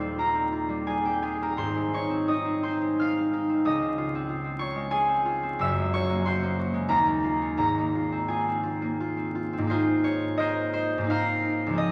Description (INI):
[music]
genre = classical, solo harp piece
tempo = 80-96 BPM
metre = 3/4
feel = rubato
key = Ab major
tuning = A4 = 440 Hz
[part]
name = concert harp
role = solo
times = 0.0-11.9 s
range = Eb1 to F6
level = -27 LUFS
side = equal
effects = none
[sound]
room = wet church reverb, RT60 3.4 s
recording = vinyl crackle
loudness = -27 LUFS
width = mono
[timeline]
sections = 0.0-9.7 A section; 9.7-11.9 B section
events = none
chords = 0.0 Eb13; 1.6 Ab69; 3.6 Dbmaj7; 5.6 Gb9; 6.9 Eb9sus4; 7.6 Ab69